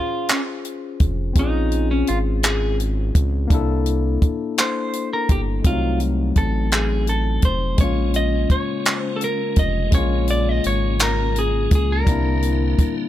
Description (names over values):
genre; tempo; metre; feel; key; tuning
slow six-eight R&B; 56 BPM (dotted quarters); 6/8; straight; Bb minor; A4 = 440 Hz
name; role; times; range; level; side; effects
clean electric guitar; melody; 0.0-12.9 s; Db4 to Eb5; -25 LUFS; right 1 dB; none
barky tine electric piano; accompaniment; 0.0-13.1 s; Gb3 to C5; -25 LUFS; left 7 dB; overdrive
compact cocktail drum kit; drums; 0.3-13.0 s; handclaps, hi-hat, kick drum; -19 LUFS; equal; none
round analog bass; bass; 1.0-12.9 s; F1 to Db2; -21 LUFS; right 1 dB; none
tonewheel organ; sustained chords; 7.8-13.1 s; Db3 to E4; -31 LUFS; right 1 dB; overdrive, chorus vibrato, fast rotary speaker
room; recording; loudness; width
little or no reverb; none; -17 LUFS; side -12 dB against mid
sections
0.0-13.1 A section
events
clean electric guitar solo 0.0-13.1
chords
0.0 Bbm9; 3.5 C13; 5.6 F7b9; 7.8 Bbm7; 12.1 C9